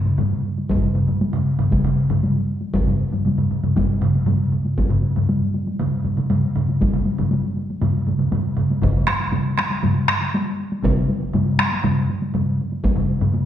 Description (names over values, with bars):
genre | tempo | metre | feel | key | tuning
japanese traditional, taiko drum ensemble | 119 BPM | 4/4 | straight | none | none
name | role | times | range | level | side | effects
taiko ensemble | percussion | 0.0-13.3 s | none | -23 LUFS | left 1 dB | none
solo taiko drums | percussion | 0.1-13.3 s | none | -22 LUFS | right 2 dB | none
taiko ensemble | percussion | 0.1-13.5 s | none | -24 LUFS | left 2 dB | none
taiko ensemble | percussion | 0.7-13.0 s | none | -24 LUFS | equal | none
room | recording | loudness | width
wet recital hall reverb, RT60 1.3 s | recorded in a church or concert hall, nothing above 10.7 kHz | -18 LUFS | side -10 dB against mid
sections
0.0-4.8 A section; 4.8-13.5 B section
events
none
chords
none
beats
0.19 | 0.70 1.21 1.72 2.23 | 2.74 3.25 3.76 4.27 | 4.78 5.29 5.79 6.30 | 6.80 7.31 7.82 8.32 | 8.82 9.33 9.83 10.34 | 10.84 11.34 11.84 12.34 | 12.84 13.34